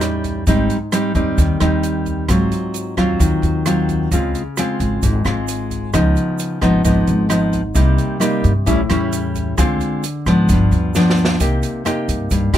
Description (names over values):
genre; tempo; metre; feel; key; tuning
bossa nova; 132 BPM; 4/4; straight; C minor; A4 = 441 Hz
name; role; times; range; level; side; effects
nylon-string guitar; accompaniment; 0.0-12.6 s; G2 to G4; -17 LUFS; left 1 dB; none
upright bass; bass; 0.0-12.6 s; G1 to Ab2; -19 LUFS; equal; none
open jazz drum kit; drums; 0.0-12.6 s; hi-hat, kick drum, rim click, snare drum; -22 LUFS; right 1 dB; none
egg shaker; percussion; 0.0-12.6 s; none; -32 LUFS; right 8 dB; none
room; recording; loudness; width
little or no reverb; none; -15 LUFS; side -11 dB against mid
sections
0.0-11.4 A section; 11.4-12.6 B section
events
drum fill 10.9-11.4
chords
0.5 Abmaj7; 2.3 Ab6; 4.1 Dbmaj7; 5.9 Db9; 7.8 Cm7; 8.7 A7; 9.6 Dm7b5; 10.5 G7; 11.4 Cm7